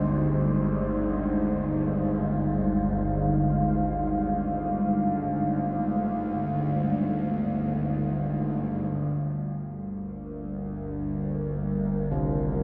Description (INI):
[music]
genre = dark ambient drone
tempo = free time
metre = none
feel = none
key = unclear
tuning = A4 = 440 Hz
[part]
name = dark analog pad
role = sustained chords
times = 0.0-12.6 s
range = G3 to F5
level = -30 LUFS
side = equal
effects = chorus
[part]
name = bowed-like drone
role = drone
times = 0.0-12.6 s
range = G1 to D2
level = -31 LUFS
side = equal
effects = built-in reverb, phaser
[part]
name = wind-like tuned noise texture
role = texture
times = 0.0-8.9 s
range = C5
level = -49 LUFS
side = equal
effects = built-in reverb
[part]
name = carillon bells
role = arpeggios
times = 12.1-12.6 s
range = C3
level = -31 LUFS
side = equal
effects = none
[sound]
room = wet spring reverb, RT60 2.9 s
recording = echo-heavy mix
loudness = -27 LUFS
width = mono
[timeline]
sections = 0.0-8.9 A section; 8.9-12.6 B section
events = fade-out on synth texture 0.0-8.9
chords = 0.0 Ab/G; 8.9 Gm